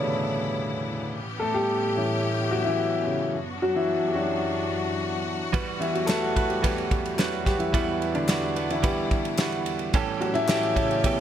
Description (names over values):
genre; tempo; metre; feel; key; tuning
piano-driven pop; 109 BPM; 4/4; straight; E dorian; A4 = 442 Hz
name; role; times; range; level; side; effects
dark baby grand piano; accompaniment; 0.0-11.2 s; F#2 to A4; -26 LUFS; left 1 dB; none
clear studio string section; sustained chords; 0.0-11.2 s; E2 to G4; -32 LUFS; left 1 dB; none
direct-recorded clean electric guitar; riff; 5.5-11.2 s; A2 to B4; -30 LUFS; right 8 dB; spring reverb
loose indie drum kit; drums; 5.5-11.2 s; kick drum, ride cymbal, snare drum; -27 LUFS; equal; none
group handclap; percussion; 6.1-10.6 s; none; -37 LUFS; left 4 dB; none
room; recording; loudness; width
light reverb, small room reverb; none; -23 LUFS; side -10 dB against mid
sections
0.0-11.2 A section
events
grand piano solo 0.0-11.2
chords
0.0 Emadd9; 1.1 A7; 3.3 Bm/F#; 5.5 Emadd9; 9.9 A7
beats
0.04 0.59 | 1.14 1.69 2.24 2.79 | 3.34 3.89 4.44 4.99 | 5.54 6.09 6.64 7.19 | 7.74 8.29 8.84 9.39 | 9.94 10.49 11.04